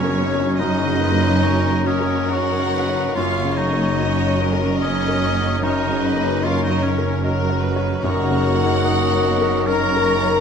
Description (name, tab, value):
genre	cinematic, emotional film score for orchestra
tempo	73 BPM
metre	3/4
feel	rubato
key	F# major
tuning	A4 = 440 Hz
part	warm symphonic violin section	melody	0.0-10.4 s	A#4 to D#5	-28 LUFS	left 4 dB	none
part	bright clarinet	second line	0.0-10.4 s	C#4 to A#4	-25 LUFS	equal	none
part	warm oboe	second line	0.0-10.4 s	A#4 to D#5	-29 LUFS	right 2 dB	none
part	warm symphonic violin section	second line	0.0-10.4 s	C#5 to A#5	-27 LUFS	left 2 dB	none
part	felt-muted upright piano	accompaniment	0.0-10.4 s	F#2 to D#5	-26 LUFS	left 2 dB	none
part	warm symphonic viola section	accompaniment	0.0-10.4 s	A#3 to F#4	-29 LUFS	right 2 dB	none
part	mellow French horn section	sustained chords	0.0-10.4 s	F#3 to A#4	-25 LUFS	left 5 dB	none
part	concert harp	arpeggios	0.0-10.4 s	F#2 to C#6	-30 LUFS	left 11 dB	none
part	rich symphonic double bass section	bass	0.0-10.4 s	F#1	-25 LUFS	right 5 dB	none
part	warm symphonic cello section	bass	0.0-10.4 s	F#2	-25 LUFS	right 4 dB	none
part	timpani	percussion	8.0-9.2 s	F#2	-32 LUFS	right 1 dB	none
room	moderate scoring stage reverb, RT60 1.7 s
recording	none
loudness	-17 LUFS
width	side -7 dB against mid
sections	0.0-10.4 A section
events	none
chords	0.0 F#6; 3.2 D#m7/F#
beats	| 0.58 1.42 2.32 | 3.17 3.99 4.81 | 5.62 6.43 7.23 | 8.02 8.84 9.67